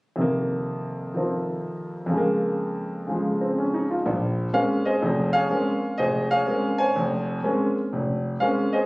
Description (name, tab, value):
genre	solo jazz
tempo	124 BPM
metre	4/4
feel	swing 66% on 8ths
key	Bb minor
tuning	A4 = 443 Hz
part	clear concert grand piano	solo	0.2-8.9 s	F1 to Ab5	-22 LUFS	equal	none
room	light reverb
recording	recorded on a phone in the room, club reverb, compression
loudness	-22 LUFS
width	side -24 dB against mid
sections	0.2-4.0 A section; 4.0-8.9 B section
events	none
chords	0.2 F7sus4; 2.1 Bbm7/F